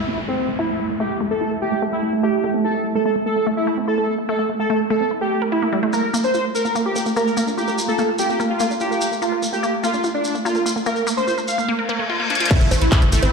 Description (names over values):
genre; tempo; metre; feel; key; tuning
psychedelic trance; 146 BPM; 4/4; straight; unclear; A4 = 436 Hz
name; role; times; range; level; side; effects
wide unison lead; melody; 0.0-13.3 s; C4 to F5; -22 LUFS; equal; phaser, sidechain pumping, tape echo
bubbling stepped-filter texture; sustained chords; 0.0-11.7 s; A3; -27 LUFS; right 4 dB; chorus, built-in reverb, sidechain pumping
downlifter and reverse cymbal; sound effects; 0.0-2.6, 11.8-13.3 s; none; -26 LUFS; left 2 dB; none
warbly tape-like pad; texture; 0.2-13.3 s; A3 to Bb5; -28 LUFS; right 1 dB; chorus, built-in reverb, sidechain pumping
wide unison pluck; riff; 0.1-13.3 s; G3 to Bb4; -24 LUFS; equal; auto-pan, sidechain pumping, tape echo
shekere; percussion; 5.9-13.3 s; none; -29 LUFS; right 1 dB; none
metallic wobble bass; second line; 8.2-8.4 s; C4; -38 LUFS; left 6 dB; none
techno drum kit; drums; 12.3-13.3 s; bongos, crash cymbal, handclaps, hi-hat; -24 LUFS; right 2 dB; overdrive, small room ambience
electronic kick drum; drums; 12.5-13.0 s; none; -16 LUFS; equal; distortion, overdrive, small room ambience
tight sequencer bass; bass; 12.6-13.3 s; A1 to Bb1; -17 LUFS; left 1 dB; none
room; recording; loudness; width
moderate lush hall reverb, RT60 1.6 s; played on a big sound system in a bare room, large studio reverb; -18 LUFS; side -4 dB against mid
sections
0.0-12.5 A section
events
reverse cymbal 11.8-12.5; drum fill 12.3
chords
0.0 A5; 5.9 Bb5; 12.5 A5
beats
0.18 0.59 | 1.00 1.41 1.82 2.23 | 2.64 3.06 3.47 3.88 | 4.29 4.70 5.11 5.52 | 5.93 6.34 6.75 7.16 | 7.58 7.99 8.40 8.81 | 9.22 9.63 10.04 10.45 | 10.86 11.27 11.69 12.10 | 12.51 12.92